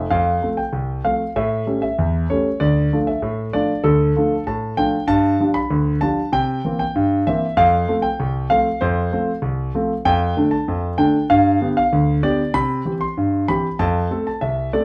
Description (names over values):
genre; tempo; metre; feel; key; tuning
ragtime piano; 96 BPM; 2/4; straight; F major, C major from 10.1 s; A4 = 442 Hz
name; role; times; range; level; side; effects
warm concert grand piano; solo; 0.0-14.8 s; C2 to C6; -19 LUFS; equal; none
room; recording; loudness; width
wet studio reverb, RT60 0.6 s; heard from further back in the room; -19 LUFS; mono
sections
0.1-14.8 A section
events
none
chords
0.1 F; 1.3 A7; 2.6 Dm; 5.1 G5; 6.3 C7; 7.6 F; 10.1 Dm/F; 11.3 G; 12.5 C; 13.8 F